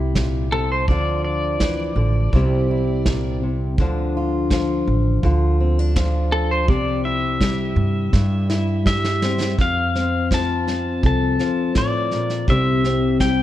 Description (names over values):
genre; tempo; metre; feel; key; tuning
acoustic folk duo or small band; 83 BPM; 4/4; straight; F major; A4 = 439 Hz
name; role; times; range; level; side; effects
fingerpicked steel-string acoustic guitar; accompaniment; 0.0-13.4 s; F2 to A4; -22 LUFS; left 2 dB; none
upright bass; bass; 0.0-13.4 s; A1 to G2; -21 LUFS; right 1 dB; none
soft brush drum kit; drums; 0.2-13.4 s; kick drum, snare drum; -22 LUFS; right 1 dB; none
pedal steel guitar; melody; 0.5-13.4 s; A4 to A5; -24 LUFS; left 1 dB; none
room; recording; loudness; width
light reverb; dark, warm production; -17 LUFS; side -13 dB against mid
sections
0.0-9.6 A section; 9.6-13.4 B section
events
pedal steel guitar solo 0.0-9.6; drum fill 8.1-9.6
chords
0.0 C; 0.9 Dm; 2.3 C; 3.8 Dm; 5.2 Dm7; 6.7 C; 9.6 F; 12.5 C